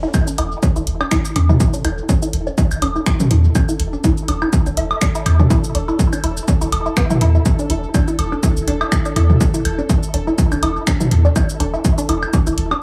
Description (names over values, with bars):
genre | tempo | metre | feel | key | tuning
minimal techno | 123 BPM | 4/4 | swing 55% on 16ths | unclear | A4 = 441 Hz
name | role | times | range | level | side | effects
resonant blip pluck | riff | 0.0-12.7 s | B3 to E4 | -25 LUFS | equal | chorus, phaser, sidechain pumping, analog delay
punchy sub bass | bass | 0.0-12.7 s | E1 to E2 | -20 LUFS | equal | sidechain pumping
pulsing gated texture | texture | 0.0-12.8 s | A4 | -34 LUFS | equal | chorus, built-in reverb, sidechain pumping
electronic kick drum | drums | 0.1-12.4 s | none | -19 LUFS | equal | overdrive
garage drum kit | drums | 0.1-12.7 s | cabasa, finger snaps, hi-hat | -28 LUFS | equal | tape echo
electronic woodblock and toms | percussion | 0.1-12.8 s | none | -24 LUFS | equal | tape echo
room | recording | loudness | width
light reverb, digital ambience | echo-heavy mix | -17 LUFS | mono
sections
0.0-12.8 A section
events
none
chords
0.0 Esus4